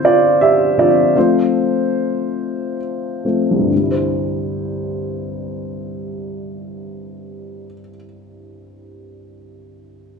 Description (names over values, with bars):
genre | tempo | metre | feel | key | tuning
pop | 42-55 BPM (dotted quarters) | 6/8 | straight | C major | A4 = 441 Hz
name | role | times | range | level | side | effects
dark upright piano | accompaniment | 0.0-10.2 s | C2 to E5 | -16 LUFS | equal | none
room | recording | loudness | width
wet large studio reverb, RT60 1.2 s | band playing live in one room, nothing above 10.7 kHz | -15 LUFS | side -5 dB against mid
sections
0.0-3.7 A section; 3.7-9.5 B section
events
slowing down 0.0-3.7; upright piano solo 0.0-3.7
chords
0.0 Dm7; 1.2 F; 3.7 Cadd9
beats
0.04 | 1.16 2.37 | 3.72 5.16 | 6.61 8.05